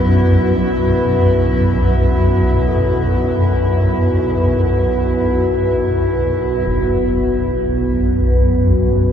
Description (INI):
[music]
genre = dark ambient drone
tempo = free time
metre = none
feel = none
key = unclear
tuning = A4 = 440 Hz
[part]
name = deep dark ambient pad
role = sustained chords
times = 0.0-9.1 s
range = B3 to B4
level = -17 LUFS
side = equal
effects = chorus, built-in reverb
[part]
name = gamelan-type bronze metallophone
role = arpeggios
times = 0.0-9.1 s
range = none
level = barely audible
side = none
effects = none
[part]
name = swarming drone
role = drone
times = 0.0-9.1 s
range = B1 to F#2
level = -16 LUFS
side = equal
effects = built-in reverb
[part]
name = metallic inharmonic drone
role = texture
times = 0.0-6.7 s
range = E4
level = -26 LUFS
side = right 3 dB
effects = chorus, built-in reverb
[part]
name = concert bass drum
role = percussion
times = 6.7-6.9 s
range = none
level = -28 LUFS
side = equal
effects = low-pass filter on kick
[sound]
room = moderate huge ambient reverb, RT60 8.4 s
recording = dreamy mix soaked in reverb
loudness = -13 LUFS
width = side -8 dB against mid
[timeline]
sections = 0.0-6.7 A section; 6.7-9.1 B section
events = none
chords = 0.0 B5